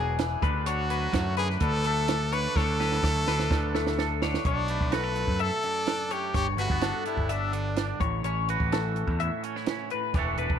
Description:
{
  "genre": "math rock and midwest emo",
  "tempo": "127 BPM",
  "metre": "4/4",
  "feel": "straight",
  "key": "A mixolydian from 4.5 s",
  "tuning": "A4 = 442 Hz",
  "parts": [
    { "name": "brilliant trumpet", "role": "melody", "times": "0.0-8.0 s", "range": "D4 to B4", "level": "-31 LUFS", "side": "equal", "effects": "slapback echo" },
    { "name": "twangy electric guitar", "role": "accompaniment", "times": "0.0-10.6 s", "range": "F#2 to A4", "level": "-34 LUFS", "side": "right 13 dB", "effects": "none" },
    { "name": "twelve-string electric guitar", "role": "arpeggios", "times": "0.0-10.6 s", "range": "G#4 to E5", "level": "-32 LUFS", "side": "left 13 dB", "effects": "lush chorus" },
    { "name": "growling picked electric bass", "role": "bass", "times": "0.0-10.6 s", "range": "E1 to F#2", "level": "-30 LUFS", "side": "left 1 dB", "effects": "overdrive" },
    { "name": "compact cocktail drum kit", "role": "drums", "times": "0.2-10.6 s", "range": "hi-hat, kick drum, snare drum", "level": "-30 LUFS", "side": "right 3 dB", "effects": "none" }
  ],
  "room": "light reverb",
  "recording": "1960s-style stereo with parts hard left and right",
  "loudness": "-25 LUFS",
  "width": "side -8 dB against mid",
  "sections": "0.0-4.5 A section; 4.5-10.6 B section",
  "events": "drum fill 2.6-4.5",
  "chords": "0.4 Bm7/D; 4.5 Bm7; 6.4 Gmaj7; 8.0 A6"
}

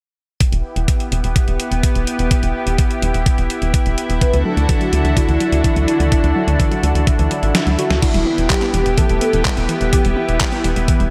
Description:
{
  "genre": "italo disco",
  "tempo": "126 BPM",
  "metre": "4/4",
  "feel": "straight",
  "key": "E minor",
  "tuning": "A4 = 440 Hz",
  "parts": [
    { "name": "lush unison pad", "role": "sustained chords", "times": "0.4-11.1 s", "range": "D3 to A4", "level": "-24 LUFS", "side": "equal", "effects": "chorus" },
    { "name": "detuned 8-bit digital drum machine", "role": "drums", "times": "0.4-11.1 s", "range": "crash cymbal, handclaps, hi-hat, snare drum", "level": "-26 LUFS", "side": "equal", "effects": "none" },
    { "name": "electronic kick drum", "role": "drums", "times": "0.4-11.0 s", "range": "none", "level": "-19 LUFS", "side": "equal", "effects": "none" },
    { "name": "tight sequencer bass", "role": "bass", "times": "0.5-11.1 s", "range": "E1 to D2", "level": "-20 LUFS", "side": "equal", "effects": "tube saturation" },
    { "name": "unison lead", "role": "melody", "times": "4.2-10.6 s", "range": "E4 to B4", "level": "-23 LUFS", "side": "equal", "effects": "delay" },
    { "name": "warbly dusty pluck", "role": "arpeggios", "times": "4.2-11.1 s", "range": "D3 to B3", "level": "-28 LUFS", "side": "equal", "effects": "chorus, analog delay" },
    { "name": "swell", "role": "sound effects", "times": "7.2-8.0 s", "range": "none", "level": "-32 LUFS", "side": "equal", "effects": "none" }
  ],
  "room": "moderate lush hall reverb, RT60 1.9 s, digital ambience",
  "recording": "dreamy mix soaked in reverb",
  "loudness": "-17 LUFS",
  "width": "mono",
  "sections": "0.4-8.0 A section; 8.0-11.1 B section",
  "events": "swell 7.2-8.0; kick drops out 7.5-8.0; drum fill 7.5-8.0",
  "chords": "0.4 Em; 4.2 Dadd9; 8.0 Em"
}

